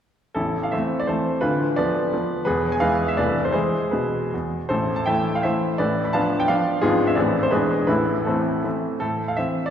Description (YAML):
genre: classical, romantic triple-time dance for piano with dotted rhythms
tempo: 145-191 BPM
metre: 3/4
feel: rubato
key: A minor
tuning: A4 = 440 Hz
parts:
  - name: bright baby grand piano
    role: solo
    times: 0.3-9.7 s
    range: A0 to B5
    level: -20 LUFS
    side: equal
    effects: none
room: wet concert hall reverb, RT60 2.3 s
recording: heard from further back in the room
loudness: -20 LUFS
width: side -9 dB against mid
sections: 0.4-9.0 A section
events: none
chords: 0.4 Am; 1.4 Bdim/D; 2.5 E; 3.2 Am/C; 3.5 E; 4.7 Am; 5.8 Bm7b5/A; 6.8 G#dim7; 7.2 Am; 7.5 E7; 7.9 Am